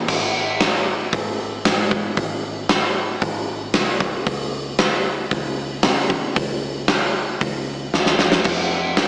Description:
rock, shoegaze and dream pop; 115 BPM; 4/4; straight; A4 = 440 Hz
vintage muted fingered electric bass; bass; 0.0-9.1 s; Ab1 to Db3; -33 LUFS; equal
big rock drum kit; drums; 0.1-9.1 s; crash cymbal, hi-hat, kick drum, snare drum; -21 LUFS; equal
light reverb; small speaker sound; -21 LUFS; mono
0.0-9.1 A section
drum fill 7.9-8.5
| 0.09 0.61 1.14 1.66 | 2.18 2.71 3.23 3.75 | 4.27 4.80 5.32 5.84 | 6.37 6.89 7.41 7.93 | 8.46 8.98

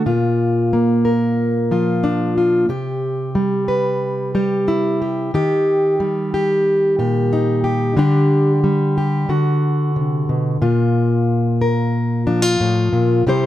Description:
folk; 91 BPM; 4/4; straight; A4 = 443 Hz
fingerpicked plugged-in steel-string acoustic guitar; solo; 0.0-13.5 s; A2 to C5; -15 LUFS; equal
light reverb; close, detailed microphones; -15 LUFS; side -13 dB against mid
0.1-13.5 A section
0.1 Bb; 2.7 C; 5.3 Eb; 8.0 Dsus4; 9.3 D; 10.6 Bb5
| 0.06 0.72 1.38 2.04 | 2.70 3.36 4.02 4.68 | 5.34 6.00 6.67 7.33 | 7.99 8.65 9.31 9.97 | 10.63 11.29 11.95 12.61 | 13.27

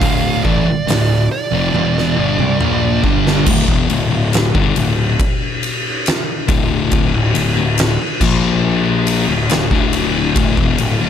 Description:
stoner and doom metal; 70 BPM; 4/4; straight; D minor; A4 = 440 Hz
fuzz lead guitar; melody; 0.0-3.0 s; D5 to F5; -22 LUFS; right 4 dB; distortion, ping-pong delay
thick fuzz guitar; riff; 0.0-11.1 s; D2 to Bb3; -17 LUFS; left 7 dB; distortion
thick fuzz guitar; riff; 0.0-3.5 s; D2 to Bb3; -18 LUFS; right 9 dB; distortion
fuzz picked electric bass; bass; 0.0-11.1 s; D1 to C2; -20 LUFS; right 1 dB; overdrive
oversized low-tuned drum kit; drums; 0.0-11.0 s; crash cymbal, hi-hat, kick drum, ride cymbal, snare drum, toms; -17 LUFS; equal
little or no reverb; -13 LUFS; side -9 dB against mid
0.0-3.5 A section; 3.5-11.1 B section
drum fill 1.7-3.5
0.0 Dm; 3.5 D5; 8.2 Bb5; 9.3 D5
| 0.02 0.88 1.74 2.61 | 3.47 4.33 5.19 6.05 | 6.91 7.78 8.64 9.50 | 10.36

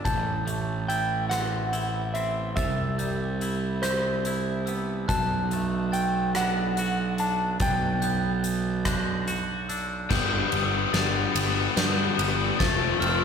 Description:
post-rock; 48 BPM (dotted quarters); 6/8; straight; G major; A4 = 440 Hz
electric slide guitar; melody; 0.0-9.2 s; C5 to A5; -30 LUFS; equal
glockenspiel with soft plastic mallets; arpeggios; 0.0-13.2 s; E6 to G7; -34 LUFS; right 2 dB
twangy electric guitar; arpeggios; 0.0-13.2 s; G2 to F#4; -34 LUFS; left 2 dB
fuzz picked electric bass; bass; 0.1-13.2 s; F1 to G2; -28 LUFS; right 2 dB; overdrive
huge arena drum kit; drums; 0.1-13.2 s; crash cymbal, hi-hat, kick drum, ride cymbal, rim click, snare drum; -31 LUFS; equal
overdriven electric guitar; riff; 10.1-13.2 s; F3 to B3; -25 LUFS; left 7 dB
moderate concert hall reverb, RT60 2.1 s; recorded in a church or concert hall; -24 LUFS; side -6 dB against mid
0.1-10.1 A section; 10.1-13.2 B section
build-up 10.1-13.2; drum fill 10.1-13.2
0.1 Am; 2.6 Cmaj7; 5.1 Bm7; 7.6 Gmaj7/B; 10.1 G; 12.6 F
| 0.05 1.31 | 2.57 3.83 | 5.09 6.35 | 7.60 8.86 | 10.11 11.36 | 12.61

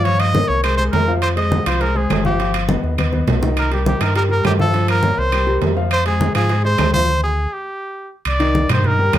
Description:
latin, salsa; 205 BPM; 4/4; straight; C minor; A4 = 439 Hz
bright trumpet; melody; 0.0-9.2 s; G4 to Eb5; -20 LUFS; right 1 dB
warm concert grand piano; accompaniment; 0.0-9.2 s; D#3 to F5; -22 LUFS; left 2 dB
sub bass with octave; bass; 0.0-9.2 s; G1 to Ab2; -19 LUFS; equal
congas; percussion; 0.1-9.2 s; -23 LUFS; left 1 dB
timbales; percussion; 0.1-9.2 s; -25 LUFS; right 6 dB
claves; percussion; 0.2-9.2 s; -30 LUFS; equal
light reverb; -15 LUFS; side -12 dB against mid
0.0-8.3 A section
drum fill 3.0-3.6; stop 7.1-8.3
0.0 Gm7b5; 0.6 Fmadd11/C; 1.2 Fm9; 2.4 Gaug7; 3.6 Cm7; 4.7 Gm7b5; 5.3 C5; 5.9 Fm; 7.1 Abmaj7#11/D; 7.7 N.C.; 8.3 Cm7
| 0.05 0.34 0.64 0.93 | 1.22 1.51 1.81 2.10 | 2.39 2.69 2.98 3.27 | 3.57 3.86 4.15 4.45 | 4.74 5.03 5.33 5.62 | 5.91 6.21 6.50 6.79 | 7.09 7.38 7.67 7.97 | 8.26 8.55 8.85 9.14

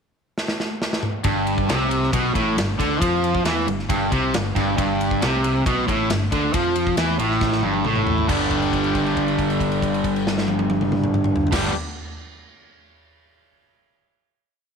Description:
classic rock; 137 BPM; 4/4; straight; G mixolydian; A4 = 440 Hz
big rock drum kit; drums; 0.4-11.6 s; crash cymbal, kick drum, ride cymbal, snare drum, toms; -25 LUFS; equal
biting overdriven guitar; riff; 1.2-11.7 s; G2 to G3; -23 LUFS; right 11 dB
crunchy overdriven guitar; riff; 1.2-11.7 s; G2 to G4; -23 LUFS; left 9 dB
modern bright fingered electric bass; bass; 1.2-11.7 s; G1 to F2; -28 LUFS; equal
light reverb, studio reverb; 1960s-style stereo with parts hard left and right; -18 LUFS; side -6 dB against mid
0.0-1.2 pickup bar; 1.2-8.3 riff; 8.3-11.8 final chord
drum fill 0.4-1.2, 7.4-8.3; held note 8.3-11.5
0.0 N.C.; 1.2 G
0.37 0.81 | 1.25 1.69 2.13 2.57 | 3.01 3.45 3.89 4.33 | 4.77 5.21 5.65 6.09 | 6.53 6.97 7.41 7.85 | 8.29 8.72 9.16 9.59 | 10.03 10.46 10.90 11.34

